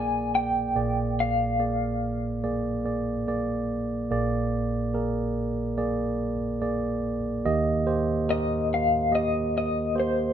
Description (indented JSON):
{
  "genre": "acoustic folk-pop ballad",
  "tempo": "72 BPM",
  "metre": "4/4",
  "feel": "straight",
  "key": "unclear",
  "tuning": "A4 = 440 Hz",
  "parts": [
    { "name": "electric guitar through a small old amp", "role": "melody", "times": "0.0-2.8, 8.3-10.3 s", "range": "C5 to Ab5", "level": "-26 LUFS", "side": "left 3 dB", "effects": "tremolo, plate reverb" },
    { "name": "mellow tine electric piano", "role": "accompaniment", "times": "0.0-10.3 s", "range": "Bb1 to Eb5", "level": "-25 LUFS", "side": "right 2 dB", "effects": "none" }
  ],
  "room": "moderate studio reverb, RT60 0.6 s",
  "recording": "dark, warm production",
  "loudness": "-24 LUFS",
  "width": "side -9 dB against mid",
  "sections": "0.0-4.1 A section; 4.1-7.4 B section; 7.4-10.3 C section",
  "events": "none",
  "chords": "0.0 Bb7; 7.4 Eb",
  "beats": "| 0.75 1.59 2.43 3.27 | 4.11 4.95 5.78 6.61 | 7.44 8.28 9.11 9.95"
}